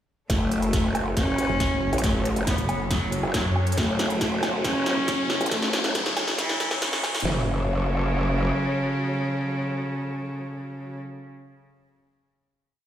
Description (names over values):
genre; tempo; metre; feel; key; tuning
heavy wobble dubstep; 138 BPM; 4/4; half-time; F# minor; A4 = 438 Hz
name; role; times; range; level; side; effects
bright cello; melody; 0.3-11.0 s; C#3 to C#4; -27 LUFS; equal; tape echo
warm studio string section; sustained chords; 0.3-11.0 s; F#3 to C#5; -34 LUFS; equal; sidechain pumping, low-pass filter
growl bass; bass; 0.3-8.5 s; F#1 to A1; -27 LUFS; equal; chorus, overdrive
big-room dance drum kit; drums; 0.3-7.3 s; hi-hat, snare drum, woodblock; -27 LUFS; right 1 dB; none
dubstep drum kit; drums; 0.3-7.4 s; kick drum, snare drum, toms; -29 LUFS; equal; none
riser; sound effects; 2.6-7.3 s; none; -35 LUFS; left 2 dB; none
snarling distorted saw bass; bass; 1.5-7.2 s; F#1 to F#2; -29 LUFS; equal; distortion, overdrive
room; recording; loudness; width
light reverb, digital ambience; played on a big sound system in a bare room, large studio reverb, high-pass filter; -22 LUFS; side -10 dB against mid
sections
0.3-7.3 build; 7.3-10.7 final chord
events
build-up 0.3-7.3; drum fill 0.3-7.3; filter sweep on string section 0.3-7.3; filter sweep 0.3-7.3; riser 2.6-7.3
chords
0.3 F#m